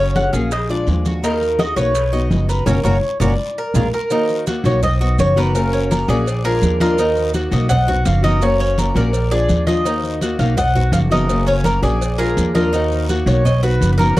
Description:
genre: latin, Cuban son and guajira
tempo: 167 BPM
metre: 4/4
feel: straight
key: Eb minor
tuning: A4 = 440 Hz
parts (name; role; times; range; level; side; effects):
- Cuban tres; melody; 0.0-14.2 s; Gb4 to Gb5; -20 LUFS; equal; none
- fingerpicked steel-string acoustic guitar; accompaniment; 0.0-14.2 s; Db3 to Gb4; -23 LUFS; left 3 dB; none
- Cuban tres; arpeggios; 0.0-14.2 s; Db4 to D#5; -24 LUFS; right 1 dB; none
- upright bass; bass; 0.0-14.2 s; F#1 to Eb2; -18 LUFS; equal; none
- guiro; percussion; 0.1-14.2 s; none; -37 LUFS; left 5 dB; none
- bongos and cowbell; percussion; 0.2-14.2 s; none; -30 LUFS; left 5 dB; none
- congas; percussion; 0.2-14.2 s; none; -22 LUFS; right 1 dB; none
- maracas; percussion; 0.2-14.2 s; none; -34 LUFS; right 11 dB; none
room: little or no reverb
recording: dry, close 1970s-style studio recording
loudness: -14 LUFS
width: side -17 dB against mid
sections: 0.0-4.1 A section; 4.1-14.2 B section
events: band accent 2.7-4.1; drum fill 3.4-4.1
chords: 0.0 Gb; 0.5 Bb7; 1.2 Ebm; 2.0 B; 2.7 Gb; 3.4 Bb7; 4.1 Ebm; 4.8 B; 5.5 Gb; 6.3 Bb7; 7.0 Ebm; 7.7 B; 8.4 Gb; 9.1 Bb7; 9.9 Ebm; 10.6 B; 11.3 Gb; 12.0 Bb7; 12.7 Ebm; 13.4 B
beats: 0.15 0.51 0.87 | 1.23 1.59 1.95 2.31 | 2.67 3.03 3.39 3.75 | 4.11 4.47 4.83 5.19 | 5.55 5.91 6.26 6.62 | 6.98 7.34 7.70 8.06 | 8.42 8.78 9.14 9.50 | 9.86 10.21 10.57 10.93 | 11.29 11.65 12.01 12.37 | 12.73 13.09 13.45 13.81 | 14.17

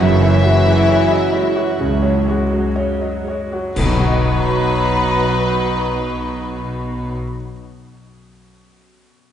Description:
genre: cinematic, emotional film score for orchestra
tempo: 58-68 BPM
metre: 4/4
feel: rubato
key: B major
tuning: A4 = 440 Hz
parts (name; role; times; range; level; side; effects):
- warm studio violin section; melody; 0.0-7.1 s; B4 to E5; -24 LUFS; left 3 dB; none
- dark studio violin section; second line; 0.0-7.1 s; E4 to F#4; -29 LUFS; left 2 dB; none
- mellow hollow silver concert flute; second line; 0.0-7.1 s; E5 to B5; -25 LUFS; left 2 dB; none
- felt-muted upright piano; accompaniment; 0.0-9.3 s; B1 to F#5; -23 LUFS; left 1 dB; none
- rich chamber viola section; accompaniment; 0.0-7.1 s; C#3 to F#4; -23 LUFS; right 3 dB; none
- mellow French horn section; sustained chords; 0.0-7.1 s; E3 to B3; -22 LUFS; left 1 dB; none
- concert harp; arpeggios; 0.0-7.7 s; F#2 to F#5; -27 LUFS; left 2 dB; none
- warm studio cello section; bass; 0.0-7.1 s; C#2 to B2; -21 LUFS; right 2 dB; none
- warm studio double bass section; bass; 0.0-7.1 s; F#1 to C#2; -24 LUFS; right 1 dB; none
- clash cymbals and concert bass drum; percussion; 3.8-5.7 s; none; -22 LUFS; left 1 dB; none
room: wet scoring stage reverb, RT60 1.7 s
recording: heard from further back in the room, nothing above 10.6 kHz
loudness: -15 LUFS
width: side -9 dB against mid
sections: 0.0-3.8 A section; 3.8-7.7 B section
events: slowing down 0.0-3.8; band accent 3.8-4.8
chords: 0.0 F#sus2; 3.8 B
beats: | 0.00 0.89 1.80 2.75 | 3.77 4.75 5.75 6.74

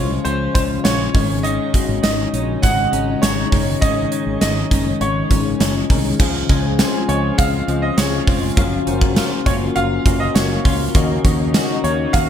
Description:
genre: 1980s-style pop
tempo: 101 BPM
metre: 4/4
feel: straight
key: unclear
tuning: A4 = 440 Hz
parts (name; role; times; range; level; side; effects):
- clear baby grand piano; melody; 0.0-12.3 s; C5 to Gb5; -23 LUFS; right 2 dB; analog chorus
- mellow tine electric piano; accompaniment; 0.0-12.3 s; Ab2 to Ab5; -22 LUFS; left 7 dB; ensemble chorus
- chorused pulse-width pad; sustained chords; 0.0-12.3 s; Db3 to F4; -27 LUFS; equal; none
- clean electric guitar; riff; 0.0-12.3 s; Eb3 to Gb4; -29 LUFS; right 7 dB; analog chorus, digital delay
- mellow fretless electric bass; bass; 0.0-12.3 s; F1 to Eb2; -22 LUFS; equal; none
- gated 80s drum kit; drums; 0.3-12.3 s; crash cymbal, hi-hat, kick drum, snare drum, tambourine; -18 LUFS; right 1 dB; none
room: light reverb, small room ambience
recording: bright 1980s-style digital production, faint mains hum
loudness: -15 LUFS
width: side -9 dB against mid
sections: 0.0-6.2 A section; 6.2-12.3 B section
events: none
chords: 0.0 Db; 1.1 Absus4; 6.2 Dbmaj7; 8.6 Gbmaj7; 10.9 Ebm7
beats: 0.26 0.85 | 1.45 2.04 2.63 3.23 | 3.82 4.42 5.01 5.60 | 6.20 6.79 7.39 7.98 | 8.57 9.17 9.76 10.36 | 10.95 11.54 12.14

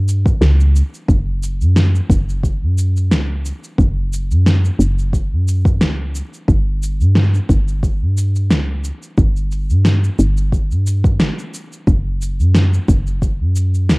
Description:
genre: organic downtempo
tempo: 89 BPM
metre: 4/4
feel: swing 54% on 16ths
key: unclear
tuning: A4 = 440 Hz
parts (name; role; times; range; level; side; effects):
- woody FM bass; bass; 0.0-14.0 s; F#1 to G2; -15 LUFS; equal; sidechain pumping
- electronic cabasa and snare drum; drums; 0.1-14.0 s; none; -19 LUFS; equal; cassette tape
- electronic kick drum; drums; 0.3-13.4 s; none; -16 LUFS; equal; cassette tape
room: little or no reverb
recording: home recording on cassette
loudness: -14 LUFS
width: side -28 dB against mid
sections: 0.0-14.0 A section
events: none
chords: none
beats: 0.41 | 1.09 1.76 2.44 3.11 | 3.78 4.46 5.13 5.81 | 6.48 7.16 7.83 8.50 | 9.18 9.85 10.53 11.20 | 11.87 12.55 13.22 13.90

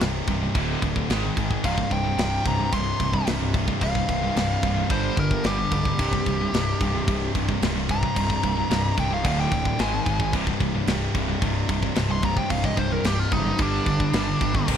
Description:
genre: heavy metal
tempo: 110 BPM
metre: 4/4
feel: straight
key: C minor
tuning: A4 = 443 Hz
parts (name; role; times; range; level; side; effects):
- scooped high-gain guitar; riff; 0.0-14.8 s; C2 to Ab3; -29 LUFS; left 8 dB; distortion
- sludgy distorted guitar; riff; 0.0-14.8 s; C2 to Ab3; -29 LUFS; right 10 dB; overdrive
- tight distorted guitar; riff; 0.0-14.8 s; C2 to Ab3; -30 LUFS; equal; distortion
- fuzz picked electric bass; bass; 0.0-14.8 s; C1 to Ab1; -28 LUFS; equal; overdrive
- tight metal drum kit; drums; 0.0-14.8 s; china cymbal, crash cymbal, kick drum, snare drum; -27 LUFS; equal; none
- nasal lead guitar with a parked wah; melody; 1.7-14.7 s; D4 to C6; -28 LUFS; left 1 dB; overdrive, ping-pong delay
room: little or no reverb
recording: dark, warm production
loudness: -21 LUFS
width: side -8 dB against mid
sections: 0.0-14.7 A section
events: lead electric guitar solo 0.0-14.7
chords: 0.0 C5; 0.6 D5; 1.1 Ab5; 1.6 C5; 4.9 G5; 6.0 C5; 9.2 D5; 9.8 Ab5; 10.3 C5; 13.6 G5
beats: 0.01 0.55 1.09 | 1.64 2.18 2.73 3.27 | 3.81 4.36 4.90 5.45 | 5.99 6.53 7.08 7.62 | 8.16 8.71 9.25 9.79 | 10.34 10.88 11.42 11.97 | 12.51 13.05 13.60 14.14 | 14.68

